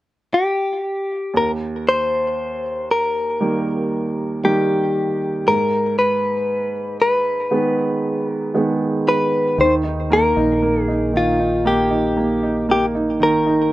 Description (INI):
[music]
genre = pop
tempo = 58 BPM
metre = 4/4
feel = straight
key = Eb major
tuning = A4 = 440 Hz
[part]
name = direct-recorded clean electric guitar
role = melody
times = 0.3-13.7 s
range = F4 to C5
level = -18 LUFS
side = left 1 dB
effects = none
[part]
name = clear upright piano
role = accompaniment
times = 1.3-13.7 s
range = Eb2 to Eb4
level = -20 LUFS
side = right 2 dB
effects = none
[part]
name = fretless electric bass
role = bass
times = 9.6-13.7 s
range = G1 to Eb2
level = -26 LUFS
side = equal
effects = none
[sound]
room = light reverb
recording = rough home demo mix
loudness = -17 LUFS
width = side -16 dB against mid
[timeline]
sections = 0.0-1.3 A section; 1.3-9.6 B section; 9.6-13.7 C section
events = none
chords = 0.0 N.C.; 1.3 Eb; 5.5 Abm; 9.6 Eb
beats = 0.30 | 1.34 2.37 3.40 4.43 | 5.46 6.49 7.51 8.55 | 9.59 10.63 11.66 12.70 | 13.72